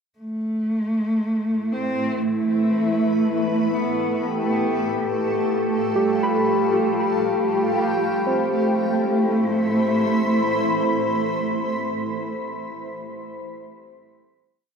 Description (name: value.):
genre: ambient.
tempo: 60 BPM.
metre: 4/4.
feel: straight.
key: A minor.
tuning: A4 = 440 Hz.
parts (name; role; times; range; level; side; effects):
warm cello; melody; 0.2-11.8 s; A3 to C4; -24 LUFS; right 1 dB; tape echo.
granular cloud pad; sustained chords; 1.3-12.3 s; A3 to B5; -23 LUFS; equal; built-in reverb.
glass harmonica; texture; 4.2-8.3 s; G4 to G5; -27 LUFS; left 5 dB; none.
muted felt-like synth keys; arpeggios; 6.0-14.8 s; G4 to B5; -27 LUFS; right 2 dB; chorus, tape echo.
room: wet spring reverb, RT60 2.8 s.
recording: echo-heavy mix.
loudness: -19 LUFS.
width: side -6 dB against mid.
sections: 0.2-8.3 A section; 8.3-12.3 final chord.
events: none.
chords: 0.2 A5; 4.2 Fsus2/A; 8.3 Am7.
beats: | 0.18 1.20 2.21 3.21 | 4.22 5.22 6.22 7.24 | 8.26 9.28 10.29 11.29.